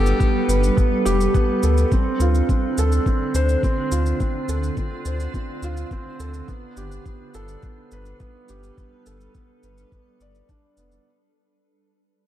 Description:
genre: piano and strings electronica.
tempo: 105 BPM.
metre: 4/4.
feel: straight.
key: unclear.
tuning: A4 = 440 Hz.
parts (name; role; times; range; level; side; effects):
warm violin; melody; 0.0-0.7 s; G4; -29 LUFS; left 3 dB; tape echo.
granular cloud pad; sustained chords; 0.0-11.1 s; D3 to C5; -28 LUFS; equal; built-in reverb.
felt-muted upright piano; riff; 0.0-11.1 s; B3 to D5; -24 LUFS; right 2 dB; tape echo.
warm sub bass; bass; 0.0-11.0 s; F1 to D2; -21 LUFS; equal; sidechain pumping.
shaker; drums; 0.1-11.0 s; none; -36 LUFS; right 1 dB; none.
electronic kick drum; drums; 0.2-10.6 s; none; -21 LUFS; equal; none.
room: light reverb.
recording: dark, warm production.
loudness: -18 LUFS.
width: side -12 dB against mid.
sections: 0.0-11.1 A section.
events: fade-out 0.0-11.1.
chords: 0.0 Gadd9; 1.9 Dm7; 6.5 Gadd9.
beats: 0.20 0.77 1.34 | 1.91 2.48 3.05 3.62 | 4.20 4.77 5.34 5.91 | 6.48 7.05 7.62 8.20 | 8.77 9.34 9.91 10.48.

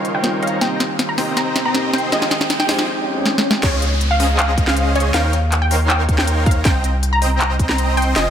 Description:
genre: future bass.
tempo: 159 BPM.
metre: 4/4.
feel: half-time.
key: unclear.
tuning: A4 = 441 Hz.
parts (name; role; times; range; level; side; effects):
wide unison pluck; melody; 0.0-8.3 s; Db5 to Bb5; -22 LUFS; equal; sidechain pumping, tape echo.
felt-muted upright piano; accompaniment; 0.0-3.7 s; G3 to Ab4; -26 LUFS; right 2 dB; sidechain pumping, digital delay.
ethereal airy pad; sustained chords; 0.0-2.9 s; Eb3 to G4; -32 LUFS; left 2 dB; ensemble chorus, built-in reverb, sidechain pumping.
dense compressed supersaw; riff; 0.0-8.3 s; C4 to C6; -22 LUFS; equal; sidechain pumping, low-pass filter.
trap drum kit; drums; 0.0-8.2 s; crash cymbal, handclaps, hi-hat, snare drum; -21 LUFS; equal; none.
riser, swell and downlifter; sound effects; 0.2-6.7 s; none; -28 LUFS; left 1 dB; none.
saturated sub bass; bass; 3.6-8.3 s; F1 to Eb2; -18 LUFS; equal; sidechain pumping.
electronic kick drum; drums; 3.6-7.7 s; none; -17 LUFS; equal; none.
room: light reverb, digital ambience.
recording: none.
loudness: -15 LUFS.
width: side -9 dB against mid.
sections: 0.0-3.6 A section; 3.6-8.3 B section.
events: build-up 0.0-3.6; drum fill 0.0-2.9, 3.3-3.6; filter sweep on ambient pad 0.0-3.6; riser 0.2-2.9; swell 2.9-3.6; drop 3.6-8.3.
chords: 0.0 Eb13; 0.6 Cm7; 2.1 Fm9; 3.6 Dbmaj7; 5.1 Eb13; 6.7 Cm7.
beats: 0.24 | 0.61 0.99 1.37 1.75 | 2.12 2.50 2.88 3.26 | 3.63 4.01 4.39 4.76 | 5.14 5.52 5.90 6.28 | 6.65 7.03 7.41 7.78 | 8.16.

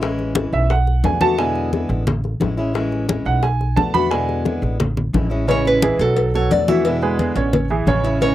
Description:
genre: latin, Cuban son and guajira.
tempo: 176 BPM.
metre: 4/4.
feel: straight.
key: A major.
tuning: A4 = 440 Hz.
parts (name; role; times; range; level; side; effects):
fingerpicked acoustic archtop guitar; accompaniment; 0.0-8.3 s; B2 to F#4; -22 LUFS; left 3 dB; none.
upright bass; bass; 0.0-8.3 s; A1 to E2; -22 LUFS; equal; none.
bongos and cowbell; percussion; 0.0-8.3 s; none; -26 LUFS; left 6 dB; none.
congas; percussion; 0.0-8.3 s; none; -22 LUFS; left 2 dB; none.
warm concert grand piano; arpeggios; 0.5-8.3 s; C#3 to B5; -20 LUFS; right 5 dB; none.
nylon-string guitar; melody; 5.5-8.3 s; A4 to E5; -19 LUFS; equal; none.
room: light reverb.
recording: dry, close 1970s-style studio recording.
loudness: -16 LUFS.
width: side -13 dB against mid.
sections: 0.0-5.5 A section; 5.5-8.3 B section.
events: grand piano solo 0.0-5.5.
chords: 0.0 Amaj7; 0.7 Bm7; 1.4 E7; 2.1 Amaj7; 3.4 Bm7; 4.1 E7; 4.8 Amaj7; 6.2 Bm7; 6.8 E7; 7.5 Amaj7.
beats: | 0.02 0.36 0.70 1.05 | 1.39 1.73 2.07 2.41 | 2.75 3.10 3.44 3.78 | 4.12 4.46 4.80 5.14 | 5.49 5.83 6.17 6.51 | 6.85 7.19 7.53 7.87 | 8.21.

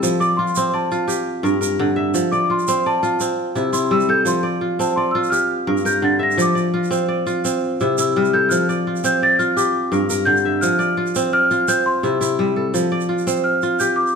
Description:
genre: west african traditional, West African string and xylophone music.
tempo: 113 BPM (dotted quarters).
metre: 12/8.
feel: straight.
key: F major.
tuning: A4 = 443 Hz.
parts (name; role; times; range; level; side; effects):
kora; arpeggios; 0.0-14.2 s; G2 to E5; -18 LUFS; equal; none.
tube shaker; percussion; 0.0-14.1 s; none; -29 LUFS; right 8 dB; none.
large celesta; melody; 0.2-14.2 s; A5 to Bb6; -19 LUFS; equal; slapback echo.
room: moderate recital hall reverb, RT60 1.5 s.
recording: close, detailed microphones.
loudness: -16 LUFS.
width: side -6 dB against mid.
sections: 0.0-14.2 A section.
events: celesta solo 0.0-14.2.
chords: 0.0 F; 1.1 Gm; 2.1 F; 3.2 C; 4.3 F; 5.3 Gm; 6.4 F5; 7.4 C; 8.5 F; 9.6 Gm; 10.6 F5; 11.7 C; 12.7 F.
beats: | 0.03 0.56 1.09 1.62 | 2.15 2.68 3.21 3.74 | 4.27 4.79 5.32 5.85 | 6.38 6.91 7.44 7.97 | 8.50 9.03 9.56 10.09 | 10.62 11.15 11.68 12.21 | 12.74 13.27 13.80.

